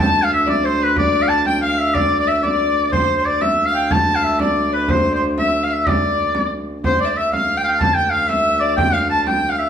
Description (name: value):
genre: medieval dance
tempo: 123 BPM (dotted quarters)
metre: 6/8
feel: straight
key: D dorian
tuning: A4 = 439 Hz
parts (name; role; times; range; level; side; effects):
- bright shawm; melody; 0.0-9.7 s; B4 to A5; -18 LUFS; right 1 dB; none
- clear fiddle; second line; 0.0-9.7 s; B4 to A5; -22 LUFS; left 5 dB; none
- warm viola da gamba; drone; 0.0-9.7 s; D2; -24 LUFS; right 1 dB; none
- frame drum; percussion; 0.2-9.5 s; none; -23 LUFS; right 2 dB; none
room: wet large studio reverb, RT60 0.9 s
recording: band playing live in one room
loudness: -15 LUFS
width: side -8 dB against mid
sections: 0.0-6.8 A section; 6.8-9.7 B section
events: none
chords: none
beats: 0.48 | 0.97 1.47 | 1.96 2.45 | 2.94 3.43 | 3.92 4.41 | 4.89 5.38 | 5.87 6.36 | 6.84 7.33 | 7.82 8.30 | 8.79 9.27